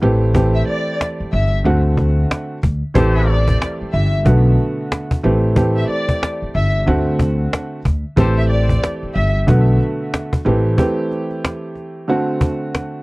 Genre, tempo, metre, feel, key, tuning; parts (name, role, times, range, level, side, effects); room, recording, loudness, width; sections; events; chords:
hip hop, boom-bap hip-hop; 92 BPM; 4/4; swing 62% on 16ths; A dorian; A4 = 438 Hz
dark upright piano; accompaniment; 0.0-13.0 s; D3 to G4; -20 LUFS; right 1 dB; cassette tape
upright bass; bass; 0.0-10.7 s; G1 to D2; -16 LUFS; equal
cajon; drums; 0.0-12.9 s; -19 LUFS; equal
warm chamber violin section; melody; 0.5-9.3 s; D5 to E5; -24 LUFS; left 1 dB; tape echo
mellow trumpet section; stabs; 3.0-3.4, 8.2-8.4 s; G4 to C5; -28 LUFS; left 2 dB; tape echo
little or no reverb; worn, warbling old tape, cassette tape, warbly pitch drift; -15 LUFS; side -23 dB against mid
0.0-13.0 A section
break 10.8-13.0
0.0 Am7; 1.6 D7; 3.0 Am7; 4.3 Bm7; 5.2 Am7; 6.9 D7; 8.2 Am7; 9.5 Bm7; 10.5 Am7; 12.1 D7